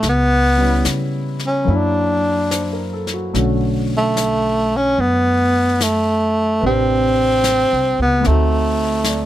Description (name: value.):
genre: jazz.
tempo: 73 BPM.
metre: 4/4.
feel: swing 68% on 8ths.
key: B minor from 3.3 s.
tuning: A4 = 438 Hz.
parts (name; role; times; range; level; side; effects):
breathy tenor saxophone; melody; 0.0-9.3 s; A3 to D4; -16 LUFS; equal; none.
warm grand piano; accompaniment; 0.0-9.3 s; C3 to D5; -24 LUFS; left 1 dB; none.
upright bass; bass; 0.0-9.3 s; A1 to C#3; -21 LUFS; equal; none.
jazz brush drum kit; drums; 0.0-9.3 s; brushed snare drum, hi-hat, snare drum; -27 LUFS; left 4 dB; none.
room: little or no reverb.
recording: close, detailed microphones.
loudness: -15 LUFS.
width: side -13 dB against mid.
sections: 0.0-3.3 A section; 3.3-9.3 B section.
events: none.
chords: 0.0 C#m7b5; 1.7 F#aug7; 3.3 Bm9; 6.6 Am11; 8.3 D7b9.